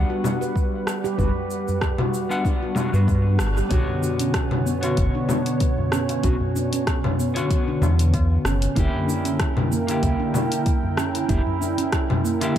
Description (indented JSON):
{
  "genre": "organic downtempo",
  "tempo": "95 BPM",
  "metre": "4/4",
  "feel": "swing 55% on 16ths",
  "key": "B harmonic minor",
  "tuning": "A4 = 440 Hz",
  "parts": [
    { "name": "mellow electric guitar", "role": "accompaniment", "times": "0.0-12.6 s", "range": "D3 to F#5", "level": "-27 LUFS", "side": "left 2 dB", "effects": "harmonic tremolo, sidechain pumping, digital delay" },
    { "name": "warm analog pad", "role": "sustained chords", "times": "0.0-12.6 s", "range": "B2 to G5", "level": "-29 LUFS", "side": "right 3 dB", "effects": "lush chorus, sidechain pumping" },
    { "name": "handpan", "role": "arpeggios", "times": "0.0-12.6 s", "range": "A#3 to B4", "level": "-27 LUFS", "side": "right 2 dB", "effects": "digital delay" },
    { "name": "round analog bass", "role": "bass", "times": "0.0-11.4 s", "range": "F#1 to G2", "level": "-20 LUFS", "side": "equal", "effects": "sidechain pumping" },
    { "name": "deep house drum kit", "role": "drums", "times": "0.2-12.6 s", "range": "cabasa, congas, hi-hat, rim click", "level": "-27 LUFS", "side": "left 2 dB", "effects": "none" },
    { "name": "electronic kick drum", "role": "drums", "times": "0.6-12.6 s", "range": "none", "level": "-24 LUFS", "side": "equal", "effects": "none" },
    { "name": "tabla", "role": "percussion", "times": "0.7-12.5 s", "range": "none", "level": "-31 LUFS", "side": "left 1 dB", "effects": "none" }
  ],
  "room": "light reverb, digital ambience",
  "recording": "dark, warm production",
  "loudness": "-20 LUFS",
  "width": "side -10 dB against mid",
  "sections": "0.0-3.7 A section; 3.7-12.6 B section",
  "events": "band accent 3.4-3.7",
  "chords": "0.0 Gmaj7; 3.7 Bmadd9; 8.8 F#7b9b13",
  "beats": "0.56 | 1.19 1.82 2.45 3.08 | 3.72 4.35 4.98 5.61 | 6.24 6.87 7.51 8.14 | 8.77 9.40 10.03 10.66 | 11.29 11.93 12.56"
}